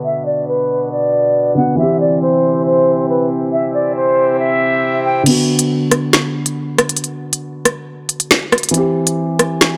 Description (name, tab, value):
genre	hip hop, drill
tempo	138 BPM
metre	4/4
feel	half-time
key	B phrygian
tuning	A4 = 440 Hz
part	concert flute	melody	0.0-5.2 s	B4 to G5	-18 LUFS	equal	analog delay
part	dark concert grand piano	accompaniment	0.0-9.8 s	D3 to G4	-21 LUFS	equal	low-pass filter
part	hand-pumped harmonium	sustained chords	0.0-5.2 s	B2 to G4	-22 LUFS	equal	none
part	drill drum kit	drums	5.3-9.7 s	crash cymbal, finger snaps, hi-hat, rim click, snare drum	-16 LUFS	equal	none
room	light reverb, small room ambience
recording	dry, gritty hardware recording, low-pass filter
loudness	-15 LUFS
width	mono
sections	0.0-5.3 A section; 5.3-9.8 B section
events	filter sweep 0.0-5.3; kick muted 5.3-9.8; filter sweep on grand piano 5.3-9.8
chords	0.0 Bm; 1.8 C; 5.3 Bm; 8.7 C